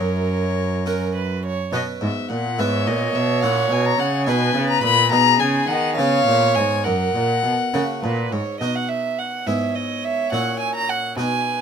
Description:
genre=classical, baroque-style sonata movement with continuo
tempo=70 BPM (dotted quarters)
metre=6/8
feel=straight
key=B major, F# major from 5.1 s, B major from 8.6 s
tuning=A4 = 439 Hz
part: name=warm violin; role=melody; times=0.0-11.6 s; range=B4 to B5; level=-22 LUFS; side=left 7 dB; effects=none
part: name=rich violin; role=second line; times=0.0-11.6 s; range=G#4 to A#5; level=-23 LUFS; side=right 6 dB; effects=none
part: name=harpsichord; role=accompaniment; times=0.0-11.6 s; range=F#2 to B4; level=-25 LUFS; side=equal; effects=none
part: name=rich cello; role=bass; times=0.0-11.6 s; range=F#2 to D#3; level=-24 LUFS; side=right 1 dB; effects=none
room=light reverb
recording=close, detailed microphones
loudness=-18 LUFS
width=side -7 dB against mid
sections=0.0-8.6 A section; 8.6-11.6 A section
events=none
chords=0.0 F#; 1.7 B5; 2.6 E/G#; 3.4 F#7/A#; 4.3 B; 5.1 G#m/B; 6.0 C#7; 6.9 F#; 8.6 B; 9.5 E/G#; 10.3 F#7/A#

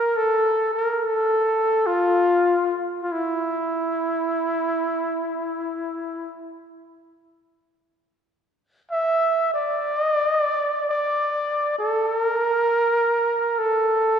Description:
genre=japanese traditional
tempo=free time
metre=none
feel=none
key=A miyako bushi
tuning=A4 = 439 Hz
part: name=breathy trumpet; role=solo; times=0.0-14.2 s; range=E4 to E5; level=-20 LUFS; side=equal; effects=none
room=wet concert hall reverb, RT60 2.2 s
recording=heard from further back in the room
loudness=-20 LUFS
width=side -7 dB against mid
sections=0.0-14.2 A section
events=none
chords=none

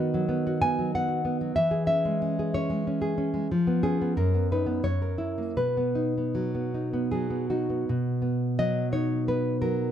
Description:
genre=romantic piece for solo classical guitar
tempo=77-96 BPM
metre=3/4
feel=rubato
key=B major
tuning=A4 = 439 Hz
part: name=nylon-string guitar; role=solo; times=0.0-9.9 s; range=F#2 to G#5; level=-24 LUFS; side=equal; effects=none
room=light reverb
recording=close, detailed microphones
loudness=-24 LUFS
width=side -10 dB against mid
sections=0.0-7.9 A section; 7.9-9.9 B section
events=none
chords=0.0 B/D#; 1.6 C#m/E; 3.5 C#7/E#; 4.2 B/F#; 4.8 F#7; 5.6 B

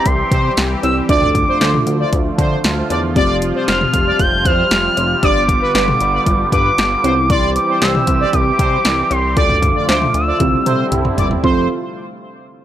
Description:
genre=synth-pop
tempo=116 BPM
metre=4/4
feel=straight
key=F major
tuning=A4 = 440 Hz
part: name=expressive synth lead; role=melody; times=0.0-11.7 s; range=C6 to G6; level=-18 LUFS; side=equal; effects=chorus, tape echo
part: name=analog synth brass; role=second line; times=0.0-11.7 s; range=B4 to D5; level=-22 LUFS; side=right 1 dB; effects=chorus, tape echo
part: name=muted felt-like synth keys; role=accompaniment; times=0.0-11.7 s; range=B3 to A4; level=-23 LUFS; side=equal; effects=chorus
part: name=sweeping resonant pad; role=sustained chords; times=0.0-11.7 s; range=C3 to G4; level=-22 LUFS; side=equal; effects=chorus
part: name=chorused synth bass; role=bass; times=0.1-11.7 s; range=F1 to D3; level=-20 LUFS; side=equal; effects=none
part: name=deep house drum kit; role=drums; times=0.1-11.6 s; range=cowbell, hi-hat, kick drum, snare drum, toms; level=-18 LUFS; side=equal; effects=none
room=little or no reverb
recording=dry, gritty hardware recording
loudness=-12 LUFS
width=side -11 dB against mid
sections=0.0-11.4 A section; 11.4-12.6 B section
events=drum fill 10.4-11.4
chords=0.0 C; 1.1 Dm; 3.2 Fsus2; 5.2 G7; 7.0 C; 9.4 Dm; 10.4 Cadd9; 11.4 F

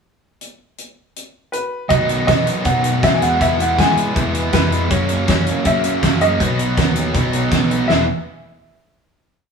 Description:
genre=indie rock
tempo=160 BPM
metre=4/4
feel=straight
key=E lydian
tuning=A4 = 440 Hz
part: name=loose indie drum kit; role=drums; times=0.4-8.0 s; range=hi-hat, kick drum, snare drum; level=-19 LUFS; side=equal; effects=none
part: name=clear upright piano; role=melody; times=1.5-8.1 s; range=B4 to G#5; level=-20 LUFS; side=equal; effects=none
part: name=fuzz guitar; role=riff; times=1.9-8.0 s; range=F#2 to G#4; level=-20 LUFS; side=right 2 dB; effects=distortion
part: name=fingered electric bass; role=bass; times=1.9-8.1 s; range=E1 to F#3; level=-22 LUFS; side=left 1 dB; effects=none
room=wet stone room reverb, RT60 1.1 s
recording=band playing live in one room, small room ambience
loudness=-14 LUFS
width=side -6 dB against mid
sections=0.4-1.9 pickup bar; 1.9-7.9 pre-chorus; 7.9-9.4 final chord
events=none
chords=0.4 N.C.; 1.9 B; 3.2 E; 4.9 F#; 6.4 B; 7.9 E

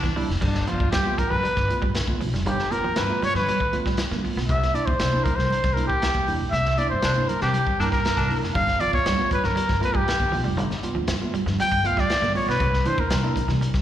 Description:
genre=funk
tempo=118 BPM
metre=4/4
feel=straight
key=G mixolydian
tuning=A4 = 439 Hz
part: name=raspy baritone saxophone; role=second line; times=0.0-0.3, 7.0-8.3 s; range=D4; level=-31 LUFS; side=left 3 dB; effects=plate reverb, slapback echo
part: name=semi-hollow electric guitar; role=riff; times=0.0-4.5, 8.6-13.7 s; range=E3 to C4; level=-32 LUFS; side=right 4 dB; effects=lush chorus, slapback echo
part: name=upright bass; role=bass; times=0.0-13.8 s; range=F1 to C3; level=-27 LUFS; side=left 1 dB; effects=none
part: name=crunchy breakbeat drum kit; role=drums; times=0.0-13.8 s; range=crash cymbal, hi-hat, kick drum, snare drum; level=-27 LUFS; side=equal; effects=slapback echo
part: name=congas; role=percussion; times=0.0-13.8 s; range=none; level=-36 LUFS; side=right 3 dB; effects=none
part: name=mellow tine electric piano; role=stabs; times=0.2-13.8 s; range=G2 to F4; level=-31 LUFS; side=right 4 dB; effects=overdrive, slapback echo
part: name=breathy trumpet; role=melody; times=0.4-13.5 s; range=D4 to G5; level=-24 LUFS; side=equal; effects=plate reverb, slapback echo
room=moderate club ambience, RT60 0.5 s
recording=live gig heard through the venue's PA, recital hall reverb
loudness=-20 LUFS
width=side -11 dB against mid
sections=0.4-13.8 A section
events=trumpet solo 0.4-13.8; band accent 6.5-8.6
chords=0.4 G9; 4.5 C9; 8.6 G9; 12.6 C9

